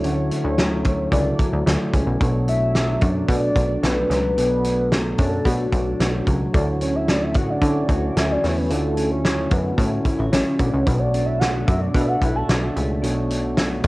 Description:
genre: indie pop, bedroom pop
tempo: 111 BPM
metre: 4/4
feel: straight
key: unclear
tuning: A4 = 437 Hz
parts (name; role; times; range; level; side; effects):
- soft octave-layered synth lead; melody; 0.0-12.6 s; F#4 to A5; -25 LUFS; equal; phaser, analog chorus, cassette tape, analog delay
- mellow electric guitar; accompaniment; 0.0-13.9 s; B2 to F#4; -25 LUFS; left 1 dB; lush chorus, vibrato effect
- soft electric-piano-like synth keys; accompaniment; 0.0-13.9 s; D4 to E5; -29 LUFS; right 2 dB; chorus
- plucky analog bass; bass; 0.0-13.9 s; A1 to D3; -24 LUFS; equal; none
- loose indie drum kit; drums; 0.0-13.9 s; hi-hat, kick drum, snare drum; -22 LUFS; equal; cassette tape
room: light reverb, small room ambience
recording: home recording on cassette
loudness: -18 LUFS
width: side -20 dB against mid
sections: 0.0-2.2 A section; 2.2-13.9 B section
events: soft synth lead solo 2.2-13.9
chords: 0.0 Dmaj7; 2.2 Bm7; 6.5 Dmaj7; 10.9 Bm7

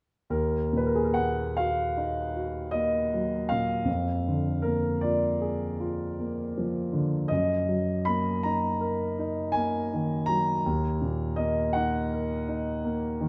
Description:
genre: classical, romantic nocturne for solo piano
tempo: 52 BPM (dotted quarters)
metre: 9/8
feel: uneven beats, rubato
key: Eb minor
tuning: A4 = 440 Hz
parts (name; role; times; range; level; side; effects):
- warm concert grand piano; solo; 0.3-13.3 s; Eb2 to Cb6; -28 LUFS; equal; none
room: moderate scoring stage reverb, RT60 2.0 s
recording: none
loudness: -28 LUFS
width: mono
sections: 0.3-13.3 A section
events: none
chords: 0.3 Ebm; 3.9 Bb7/F; 7.3 Ebm/Gb; 10.6 Ebm

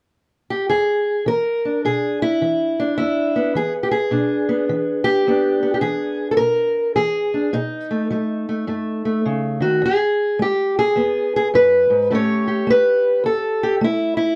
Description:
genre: acoustic country blues, solo or duo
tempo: 105 BPM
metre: 4/4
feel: swing 64% on 8ths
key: E mixolydian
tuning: A4 = 439 Hz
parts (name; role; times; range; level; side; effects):
- fingerpicked steel-string acoustic guitar; solo; 0.5-14.4 s; E2 to C#5; -19 LUFS; equal; none
room: light reverb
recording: dry, close 1970s-style studio recording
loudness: -19 LUFS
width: mono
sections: 0.7-9.8 A section; 9.8-14.4 B section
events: none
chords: 0.0 N.C.; 0.7 E7; 7.5 B7; 9.8 E; 12.1 A7

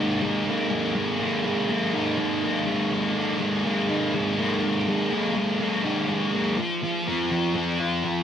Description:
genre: rock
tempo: 123 BPM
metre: 4/4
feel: straight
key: unclear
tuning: A4 = 440 Hz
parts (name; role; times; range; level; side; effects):
- thick fuzz guitar; solo; 0.0-8.2 s; F3 to F4; -22 LUFS; equal; distortion, lush chorus, cassette tape, tape echo
room: light reverb, digital ambience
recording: home recording on cassette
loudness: -22 LUFS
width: side -9 dB against mid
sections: 0.0-8.2 A section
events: none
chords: 0.0 Absus2; 6.6 F5

